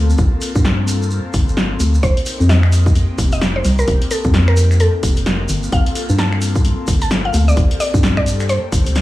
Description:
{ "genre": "UK garage, two-step garage", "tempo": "130 BPM", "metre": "4/4", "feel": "swing 61% on 16ths", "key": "G minor", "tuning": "A4 = 440 Hz", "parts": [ { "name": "airy breathy pad", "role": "sustained chords", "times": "0.0-9.0 s", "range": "Bb3 to A4", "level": "-26 LUFS", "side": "left 2 dB", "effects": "chorus, phaser, sidechain pumping" }, { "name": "organ-like FM bass", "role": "bass", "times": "0.0-9.0 s", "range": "F1 to G2", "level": "-15 LUFS", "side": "equal", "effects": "none" }, { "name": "shekere", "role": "percussion", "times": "0.1-9.0 s", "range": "none", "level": "-30 LUFS", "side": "right 2 dB", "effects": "none" }, { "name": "electronic kick drum", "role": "drums", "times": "0.2-8.8 s", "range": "none", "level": "-16 LUFS", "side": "equal", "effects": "none" }, { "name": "punchy analog drum machine", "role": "drums", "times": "0.4-9.0 s", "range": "finger snaps, hi-hat, snare drum", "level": "-22 LUFS", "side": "equal", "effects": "none" }, { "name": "mallet-like synth pluck", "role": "melody", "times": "2.0-8.8 s", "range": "A4 to A5", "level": "-22 LUFS", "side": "equal", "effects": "chorus, tape echo" } ], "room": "little or no reverb", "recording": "vinyl crackle, studio reverb", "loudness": "-13 LUFS", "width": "side -16 dB against mid", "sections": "0.0-9.0 A section", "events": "none", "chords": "0.0 Gm11; 2.0 F9sus4; 5.5 Gm11" }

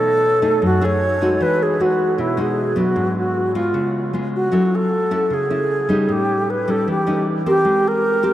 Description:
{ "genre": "bossa nova", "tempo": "154 BPM", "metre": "4/4", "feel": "straight", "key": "unclear", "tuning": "A4 = 440 Hz", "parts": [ { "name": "bright reedy wooden-headed alto flute", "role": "melody", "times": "0.0-8.3 s", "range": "E4 to C#5", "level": "-18 LUFS", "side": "right 1 dB", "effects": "none" }, { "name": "nylon-string guitar", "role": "accompaniment", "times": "0.0-8.3 s", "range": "F#2 to A#4", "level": "-20 LUFS", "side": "left 1 dB", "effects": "none" } ], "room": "wet huge ambient reverb, RT60 8.5 s", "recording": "in a vast, echoing space", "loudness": "-16 LUFS", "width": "side -13 dB against mid", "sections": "0.0-4.5 A section; 4.5-8.3 B section", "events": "none", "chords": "0.0 B13; 1.4 Emaj9; 3.0 G#m7b5; 3.7 C#7; 4.5 F#m7; 6.1 A7#11; 7.7 G#maj9" }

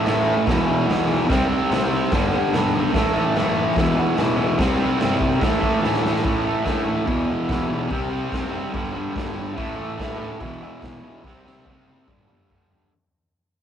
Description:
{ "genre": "garage rock duo or trio", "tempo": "145 BPM", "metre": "4/4", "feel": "straight", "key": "unclear", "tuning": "A4 = 440 Hz", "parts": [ { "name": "fuzz guitar", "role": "riff", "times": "0.0-12.9 s", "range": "E2 to C4", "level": "-20 LUFS", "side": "equal", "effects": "distortion" }, { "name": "fuzz picked electric bass", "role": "bass", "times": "0.1-12.9 s", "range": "E1 to D2", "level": "-30 LUFS", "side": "equal", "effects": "none" }, { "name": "raw garage drum kit", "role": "drums", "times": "0.1-12.9 s", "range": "hi-hat, kick drum, snare drum, toms", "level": "-26 LUFS", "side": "equal", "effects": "none" } ], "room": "moderate small room reverb, RT60 0.5 s", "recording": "rough rehearsal-room recording", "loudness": "-19 LUFS", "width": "side -9 dB against mid", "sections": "0.0-6.2 A section; 6.2-12.9 B section", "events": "drum fill 5.8-6.2, 11.2-12.9; fade-out 6.2-12.9", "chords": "0.5 E5; 1.3 C5; 2.1 G; 3.0 A5; 3.8 E5; 4.6 C5; 5.4 A5; 7.1 E5; 7.9 C5; 8.7 G5; 9.6 A5; 10.4 E5; 11.2 C5; 12.1 G" }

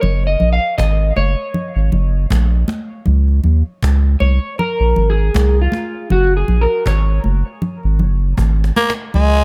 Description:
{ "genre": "roots reggae", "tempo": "79 BPM", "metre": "4/4", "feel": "swing 56% on 16ths", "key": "unclear", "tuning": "A4 = 440 Hz", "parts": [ { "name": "electric guitar at the edge of break-up", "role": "accompaniment", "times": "0.0-7.2 s", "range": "F4 to F5", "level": "-22 LUFS", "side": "equal", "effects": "subtle chorus, dub echo" }, { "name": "soft dub sub bass", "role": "bass", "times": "0.0-9.4 s", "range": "Gb1 to Eb2", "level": "-16 LUFS", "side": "equal", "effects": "none" }, { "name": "cajon", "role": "drums", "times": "0.0-9.4 s", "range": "none", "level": "-28 LUFS", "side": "equal", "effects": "none" }, { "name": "congas", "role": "percussion", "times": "0.0-9.3 s", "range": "none", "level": "-26 LUFS", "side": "equal", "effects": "none" }, { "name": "raspy tenor saxophone", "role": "melody", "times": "8.8-9.4 s", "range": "Ab3 to Bb3", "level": "-18 LUFS", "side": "equal", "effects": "none" } ], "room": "studio reverb", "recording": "none", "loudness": "-16 LUFS", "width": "mono", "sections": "0.0-9.1 A section", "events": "clean electric guitar solo 0.0-9.1; drum fill 8.4-9.1", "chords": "0.0 Gb; 3.1 Db5; 6.1 Gb; 7.6 Gbsus2" }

